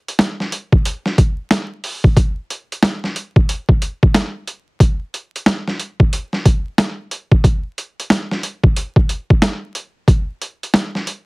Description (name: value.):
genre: hip hop.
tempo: 91 BPM.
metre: 4/4.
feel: swing 63% on 16ths.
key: none.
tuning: none.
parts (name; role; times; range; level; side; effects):
boom bap sampler-style drum kit; drums; 0.1-11.3 s; hi-hat, kick drum, snare drum; -14 LUFS; equal; overdrive.
room: light reverb.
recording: heavily compressed radio sound, vinyl crackle.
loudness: -15 LUFS.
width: side -30 dB against mid.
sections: 0.0-11.3 A section.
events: none.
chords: none.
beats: 0.19 0.85 1.51 | 2.17 2.83 3.48 4.14 | 4.80 5.46 6.12 6.78 | 7.44 8.10 8.76 9.42 | 10.08 10.74.